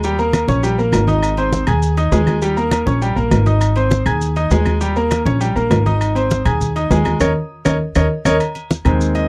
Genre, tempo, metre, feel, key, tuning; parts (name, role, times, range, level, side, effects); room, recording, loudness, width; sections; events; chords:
latin, salsa; 201 BPM; 4/4; straight; Ab major; A4 = 440 Hz
bright grand piano; accompaniment; 0.0-9.3 s; Eb3 to Ab6; -21 LUFS; equal
upright bass; bass; 0.0-9.3 s; Ab1 to Eb2; -20 LUFS; equal
agogo bells and timbales; percussion; 0.0-9.3 s; -25 LUFS; equal
congas; percussion; 0.0-9.3 s; -24 LUFS; equal
maracas; percussion; 0.0-9.3 s; -37 LUFS; equal
claves; percussion; 0.3-9.0 s; -33 LUFS; equal
little or no reverb; dry, close 1970s-style studio recording; -16 LUFS; mono
0.0-8.4 A section
band accent 7.2-8.4; drum fill 7.8-8.4
0.0 Eb7; 1.2 Ab; 2.4 Eb7; 3.6 Ab; 4.8 Eb7; 6.0 Ab; 7.2 Eb5; 8.4 Ab